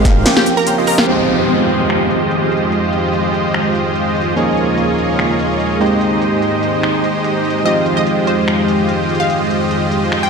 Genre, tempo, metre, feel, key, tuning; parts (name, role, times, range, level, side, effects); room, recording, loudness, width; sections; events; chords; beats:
future bass; 146 BPM; 4/4; swing 53% on 16ths, half-time; F minor; A4 = 439 Hz
barky tine electric piano; accompaniment; 0.0-10.3 s; F3 to Ab4; -19 LUFS; right 3 dB; sidechain pumping, tape echo
airy dreamy lead; arpeggios; 0.0-1.1 s; Eb5 to G5; -26 LUFS; left 1 dB; chorus, sidechain pumping, tape echo
dense compressed supersaw; riff; 0.0-10.3 s; Ab3 to G5; -16 LUFS; equal; sidechain pumping, low-pass filter, tape echo
big-room dance drum kit; drums; 0.1-10.2 s; crash cymbal, finger snaps, hi-hat, snare drum; -19 LUFS; left 1 dB; low-pass filter on snare, low-pass filter on hats, low-pass filter on cymbals, low-pass filter on room
wide unison pluck; melody; 0.4-1.0, 7.7-10.3 s; G4 to Bb5; -20 LUFS; moving between left 4 dB and right 2 dB; auto-pan, sidechain pumping, digital delay
airy breathy pad; sustained chords; 1.1-10.3 s; Eb2 to G4; -22 LUFS; left 2 dB; chorus, sidechain pumping
downlifter; sound effects; 1.1-4.4 s; -21 LUFS; left 2 dB
wet lush hall reverb, RT60 1.6 s, digital ambience; dark, warm production; -13 LUFS; side -5 dB against mid
0.0-1.1 A section; 1.1-10.3 B section
drop 0.0-1.1
0.3 Eb13; 1.1 Fm9; 4.4 Eb9sus4; 5.8 Abmaj7; 7.7 Fm9
0.26 0.67 | 1.08 1.49 1.90 2.31 | 2.72 3.13 3.54 3.96 | 4.37 4.78 5.19 5.60 | 6.01 6.42 6.83 7.24 | 7.65 8.06 8.48 8.89 | 9.30 9.71 10.12